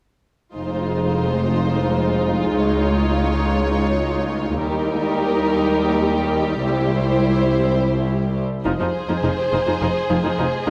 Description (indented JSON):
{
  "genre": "cinematic",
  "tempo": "free time",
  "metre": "none",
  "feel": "none",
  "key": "F minor",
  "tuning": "A4 = 442 Hz",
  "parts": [
    { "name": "warm symphonic violin section", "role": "second line", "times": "0.6-10.7 s", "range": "F4 to Db5", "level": "-26 LUFS", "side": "equal", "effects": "none" },
    { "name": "dark symphonic viola section", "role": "accompaniment", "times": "0.6-10.7 s", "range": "F3 to E4", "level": "-24 LUFS", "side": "equal", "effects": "none" },
    { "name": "clear symphonic double bass section", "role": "bass", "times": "0.6-10.5 s", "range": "F1 to Eb2", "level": "-27 LUFS", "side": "equal", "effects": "none" },
    { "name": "rich symphonic cello section", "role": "bass", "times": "0.6-10.7 s", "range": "C2 to F2", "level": "-27 LUFS", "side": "equal", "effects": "none" }
  ],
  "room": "moderate scoring stage reverb, RT60 1.8 s",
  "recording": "none",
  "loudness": "-20 LUFS",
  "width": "mono",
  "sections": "0.6-8.7 A section; 8.7-10.7 B section",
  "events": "build-up 8.7-10.7",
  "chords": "0.6 Fm7; 2.6 Dbadd9; 4.6 Eb; 6.6 C; 8.7 Fm7",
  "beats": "free time"
}